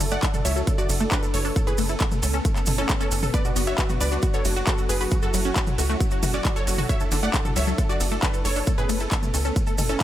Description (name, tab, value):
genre	uplifting trance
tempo	135 BPM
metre	4/4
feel	straight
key	unclear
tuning	A4 = 441 Hz
part	wide unison pluck	melody	0.0-10.0 s	C#4 to F#5	-28 LUFS	equal	sidechain pumping, tape echo
part	analog string pad	sustained chords	0.0-10.0 s	F#3 to A4	-34 LUFS	equal	ensemble chorus, sidechain pumping
part	tight sequenced synth	arpeggios	0.0-10.0 s	D2 to B4	-31 LUFS	left 2 dB	chorus, phaser, sidechain pumping, tape echo
part	tight sequencer bass	bass	0.0-10.0 s	F#1 to C#2	-26 LUFS	equal	sidechain pumping
part	big-room dance drum kit	drums	0.0-10.0 s	handclaps, hi-hat, ride cymbal, toms	-29 LUFS	equal	none
part	maracas	percussion	0.0-10.0 s	none	-34 LUFS	right 2 dB	none
part	electronic kick drum	drums	0.2-10.0 s	none	-24 LUFS	equal	none
room	digital ambience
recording	none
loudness	-21 LUFS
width	side -12 dB against mid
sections	0.0-10.0 A section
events	none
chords	0.0 Dadd9/F#; 1.6 Aadd9/F#; 3.3 Bm/F#; 5.1 F#m7; 6.9 Dadd9/F#; 8.7 Aadd9/F#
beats	0.23 0.67 1.12 | 1.56 2.01 2.45 2.90 | 3.34 3.78 4.23 4.67 | 5.12 5.56 6.01 6.45 | 6.89 7.34 7.78 8.23 | 8.67 9.12 9.56 10.01